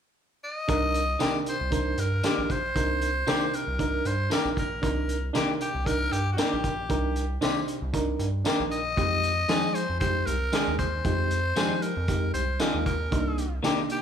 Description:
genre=straight-eighth soul blues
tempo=116 BPM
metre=4/4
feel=swing 56% on 16ths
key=C minor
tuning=A4 = 441 Hz
part: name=growling tenor saxophone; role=melody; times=0.4-14.0 s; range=F#4 to Eb5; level=-29 LUFS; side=left 1 dB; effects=none
part: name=reed electric piano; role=accompaniment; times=0.7-14.0 s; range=Ab3 to C5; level=-30 LUFS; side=right 3 dB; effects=fast tremolo
part: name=rubbery square bass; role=bass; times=0.7-14.0 s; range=Bb1 to F3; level=-30 LUFS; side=equal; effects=none
part: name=crunchy breakbeat drum kit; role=drums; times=0.7-14.0 s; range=hi-hat, kick drum, snare drum, tambourine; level=-31 LUFS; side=equal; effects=none
part: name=clean electric guitar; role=stabs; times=1.2-13.8 s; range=Eb3 to Ab4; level=-31 LUFS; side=left 5 dB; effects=none
room=light reverb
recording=band playing live in one room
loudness=-24 LUFS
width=side -8 dB against mid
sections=0.7-14.0 A section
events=none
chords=0.0 N.C.; 0.7 Cm7; 9.0 Fm7; 13.1 Cm7

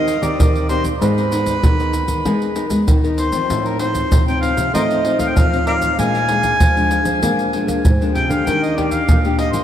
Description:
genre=samba and choro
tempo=96 BPM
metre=4/4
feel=straight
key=Eb major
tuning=A4 = 440 Hz
part: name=mellow harmonica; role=melody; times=0.0-9.6 s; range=Bb4 to Ab5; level=-20 LUFS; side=equal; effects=ping-pong delay
part: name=nylon-string guitar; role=accompaniment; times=0.0-9.6 s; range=F2 to Bb4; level=-22 LUFS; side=left 4 dB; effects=ensemble chorus
part: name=nylon-string guitar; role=bass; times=0.0-9.6 s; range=Ab2 to Bb3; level=-22 LUFS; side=equal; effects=none
part: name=maracas, pandeiro and surdo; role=percussion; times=0.1-9.6 s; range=none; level=-18 LUFS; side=right 1 dB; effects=none
room=wet cathedral reverb, RT60 5.7 s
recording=dreamy mix soaked in reverb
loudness=-14 LUFS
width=side -10 dB against mid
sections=0.0-9.6 A section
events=none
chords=0.0 Eb6; 1.0 Abmadd9; 3.5 F7/A; 6.0 Bb7; 8.5 Ebmaj7

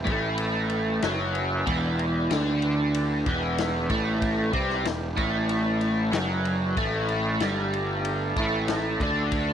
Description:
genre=psychedelic rock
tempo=94 BPM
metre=4/4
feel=straight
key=E minor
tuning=A4 = 440 Hz
part: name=tonewheel organ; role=sustained chords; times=0.0-9.5 s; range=A3 to A5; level=-35 LUFS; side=right 8 dB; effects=slow rotary speaker, overdrive
part: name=overdriven electric guitar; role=riff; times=0.0-9.5 s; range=E2 to D4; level=-25 LUFS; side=equal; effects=rotary speaker
part: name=fuzz picked electric bass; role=bass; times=0.0-9.5 s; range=E1 to D2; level=-30 LUFS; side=equal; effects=overdrive
part: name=vintage drum kit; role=drums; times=0.1-9.5 s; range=kick drum, ride cymbal, snare drum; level=-32 LUFS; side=left 3 dB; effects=none
room=light reverb, studio reverb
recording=1960s-style stereo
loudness=-23 LUFS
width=side -9 dB against mid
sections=0.0-9.5 A section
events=none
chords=0.0 Em; 6.8 A5

